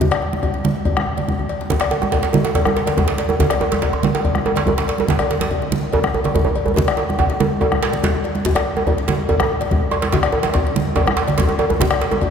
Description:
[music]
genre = west african traditional, West African drum ensemble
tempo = 142 BPM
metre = 4/4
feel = straight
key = none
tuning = none
[part]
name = bombo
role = percussion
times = 0.0-12.3 s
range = none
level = -21 LUFS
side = left 2 dB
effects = none
[part]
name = congas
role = percussion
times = 0.0-12.2 s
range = none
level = -23 LUFS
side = right 3 dB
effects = none
[part]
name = djembe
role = percussion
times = 0.0-12.3 s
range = none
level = -26 LUFS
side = left 3 dB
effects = none
[part]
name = cowbell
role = percussion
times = 0.1-12.3 s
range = none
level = -26 LUFS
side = left 6 dB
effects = none
[part]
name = djembe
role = percussion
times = 1.7-12.2 s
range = none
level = -20 LUFS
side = right 3 dB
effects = none
[sound]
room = wet cathedral reverb, RT60 5.0 s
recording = recorded in a church or concert hall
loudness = -16 LUFS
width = side -7 dB against mid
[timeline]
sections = 0.0-8.5 A section; 8.5-12.3 B section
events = drum fill 1.2-1.7, 6.8-8.5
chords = none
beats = | 0.01 0.43 0.86 1.28 | 1.71 2.13 2.55 2.98 | 3.40 3.82 4.24 4.67 | 5.09 5.51 5.93 6.35 | 6.77 7.19 7.61 8.03 | 8.45 8.87 9.29 9.71 | 10.13 10.55 10.96 11.38 | 11.80 12.22

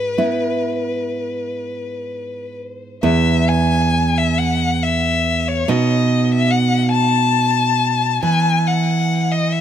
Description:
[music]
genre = romantic duo for violin and classical guitar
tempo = 41-49 BPM (dotted quarters)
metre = 12/8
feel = rubato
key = E major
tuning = A4 = 441 Hz
[part]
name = rich violin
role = melody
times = 0.0-9.6 s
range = B4 to A5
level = -19 LUFS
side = left 4 dB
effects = tape echo
[part]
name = nylon-string guitar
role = accompaniment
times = 0.0-9.6 s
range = E2 to E4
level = -18 LUFS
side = right 2 dB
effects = none
[sound]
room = moderate studio ambience, RT60 0.5 s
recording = none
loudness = -15 LUFS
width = side -9 dB against mid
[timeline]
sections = 0.0-3.0 A section; 3.0-9.6 A section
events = none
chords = 0.0 E/G#; 3.0 E5; 5.7 B7; 8.2 E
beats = 0.19 1.60 | 3.04 4.37 5.68 6.91 | 8.22 9.51

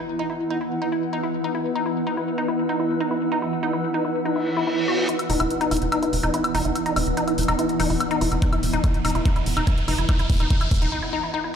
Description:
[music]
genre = psychedelic trance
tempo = 144 BPM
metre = 4/4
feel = straight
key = unclear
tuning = A4 = 439 Hz
[part]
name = swarming drone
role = sustained chords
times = 0.0-10.9 s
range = E3 to B3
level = -29 LUFS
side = equal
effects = built-in reverb, sidechain pumping
[part]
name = woody wave-folded pluck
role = riff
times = 0.0-11.5 s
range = D#4 to F#4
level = -26 LUFS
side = moving between left 5 dB and right 3 dB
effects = chorus, auto-pan, sidechain pumping, ping-pong delay
[part]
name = impact, reverse cymbal and riser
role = sound effects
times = 0.0-0.1, 4.4-10.9 s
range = none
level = -32 LUFS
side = equal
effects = none
[part]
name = granular cloud pad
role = texture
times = 0.0-10.9 s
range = E4 to E6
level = -28 LUFS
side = right 1 dB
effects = built-in reverb, sidechain pumping
[part]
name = electronic hi-hat and woodblock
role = drums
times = 5.1-10.9 s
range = none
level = -29 LUFS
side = left 2 dB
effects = overdrive, high-pass filter on hats, low-pass filter on hats, high-pass filter on perc, low-pass filter on perc, high-pass filter on snare, low-pass filter on snare, high-pass filter on room, low-pass filter on room
[part]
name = tight sequencer bass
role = bass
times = 5.3-10.9 s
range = E1 to F#1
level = -25 LUFS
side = equal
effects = none
[part]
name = electronic kick drum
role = drums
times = 8.4-10.8 s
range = none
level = -20 LUFS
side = equal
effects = overdrive
[sound]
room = light reverb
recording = played on a big sound system in a bare room, large studio reverb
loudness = -20 LUFS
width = side -8 dB against mid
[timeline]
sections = 0.0-5.1 A section; 5.1-11.6 B section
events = filter sweep on synth arpeggio sound 0.0-5.1, 5.1-11.6; filter sweep on synth drone 0.0-5.1, 5.1-11.6; reverse cymbal 4.4-5.1; build-up 5.1-11.6; riser 5.1-10.9; drum fill 8.4-10.9; break 10.9-11.6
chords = 0.0 E5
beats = | 0.09 0.51 0.92 1.34 | 1.75 2.17 2.59 3.00 | 3.42 3.84 4.25 4.67 | 5.09 5.50 5.92 6.34 | 6.75 7.17 7.59 8.01 | 8.42 8.84 9.26 9.67 | 10.09 10.51 10.92 11.34

